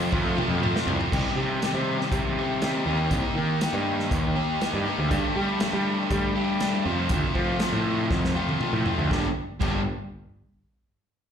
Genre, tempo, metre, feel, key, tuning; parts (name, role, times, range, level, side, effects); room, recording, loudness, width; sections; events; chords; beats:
classic rock; 120 BPM; 4/4; straight; G minor; A4 = 443 Hz
crunchy overdriven guitar; riff; 0.0-9.8 s; F2 to G4; -26 LUFS; left 1 dB; slapback echo
fuzz picked electric bass; bass; 0.0-9.8 s; G1 to G3; -27 LUFS; equal; overdrive
vintage drum kit; drums; 0.1-9.7 s; crash cymbal, hi-hat, kick drum, snare drum, toms; -30 LUFS; equal
light reverb; live gig heard through the venue's PA, club reverb; -23 LUFS; side -8 dB against mid
0.0-1.1 A section; 1.1-9.1 B section; 9.1-11.1 C section
drum fill 0.1-1.1, 8.1-9.1
0.0 F; 1.1 Cm; 2.9 Eb; 5.1 Gsus2; 6.9 F; 9.1 Gm
0.11 0.61 | 1.11 1.61 2.11 2.61 | 3.11 3.61 4.11 4.61 | 5.11 5.61 6.11 6.61 | 7.11 7.61 8.11 8.61 | 9.10 9.60